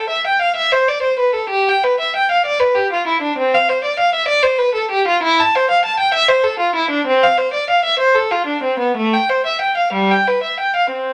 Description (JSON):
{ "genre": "classical, baroque-style suite movement for unaccompanied violin", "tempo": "59-66 BPM (dotted quarters)", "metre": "6/8", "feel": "rubato", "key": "C major", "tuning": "A4 = 440 Hz", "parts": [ { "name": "rich violin", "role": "solo", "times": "0.0-11.1 s", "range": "G3 to A5", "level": "-16 LUFS", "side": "equal", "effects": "none" } ], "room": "moderate studio reverb, RT60 0.7 s", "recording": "none", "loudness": "-16 LUFS", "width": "mono", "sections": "0.0-11.1 A section", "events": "none", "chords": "none" }